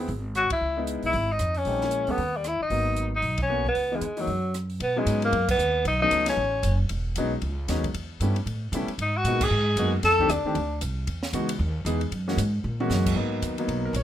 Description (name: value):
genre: jazz, small-group swing and bop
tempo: 230 BPM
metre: 4/4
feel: swing 59% on 8ths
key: B major from 4.8 s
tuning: A4 = 441 Hz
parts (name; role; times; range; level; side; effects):
- clear concert grand piano; accompaniment; 0.0-14.0 s; Eb3 to C#5; -29 LUFS; left 1 dB; none
- upright bass; bass; 0.0-14.0 s; E1 to C#3; -28 LUFS; right 1 dB; none
- compact cocktail drum kit; drums; 0.1-14.0 s; crash cymbal, hi-hat, kick drum, ride cymbal, rim click, snare drum, toms; -35 LUFS; right 1 dB; none
- warm tenor saxophone; melody; 0.4-6.8, 9.0-10.8 s; F#3 to A4; -24 LUFS; left 1 dB; none
room: light reverb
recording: minimal, uncompressed stereo recording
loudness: -23 LUFS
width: side -11 dB against mid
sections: 0.0-4.8 A section; 4.8-13.2 B section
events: band accent 0.5, 3.4, 5.5, 9.4; drum fill 12.6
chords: 0.1 Eadd9/G# (rootless); 0.6 C#m9; 1.7 A#m7b5; 2.2 D#aug; 2.7 G#m9; 3.8 C#m7; 4.3 N.C.; 4.8 B69; 5.9 B9; 6.9 Emaj13; 7.9 A9; 9.0 G#m9; 10.0 F13; 11.1 Emaj9; 12.1 F#7; 13.2 G#m9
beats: 0.08 0.34 | 0.61 0.87 1.13 1.39 | 1.66 1.92 2.18 2.44 | 2.71 2.97 3.23 3.49 | 3.76 4.02 4.28 4.54 | 4.80 5.07 5.33 5.59 | 5.85 6.11 6.38 6.64 | 6.90 7.16 7.42 7.68 | 7.94 8.20 8.46 8.73 | 8.99 9.25 9.51 9.77 | 10.03 10.29 10.55 10.81 | 11.07 11.34 11.60 11.86 | 12.12 12.38 12.64 12.90 | 13.16 13.42 13.68 13.94